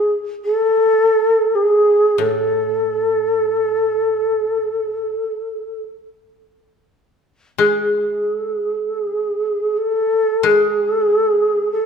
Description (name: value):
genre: japanese traditional, Japanese chamber music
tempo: free time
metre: none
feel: none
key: A ryukyu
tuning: A4 = 441 Hz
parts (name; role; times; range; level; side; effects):
- mellow hollow shakuhachi; melody; 0.0-11.9 s; G#4 to A4; -16 LUFS; equal; none
- koto; accompaniment; 0.0-11.9 s; A2 to E4; -21 LUFS; left 6 dB; none
room: moderate concert hall reverb, RT60 1.7 s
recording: minimal, uncompressed stereo recording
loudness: -15 LUFS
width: side -6 dB against mid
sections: 0.0-11.9 A section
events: none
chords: none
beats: free time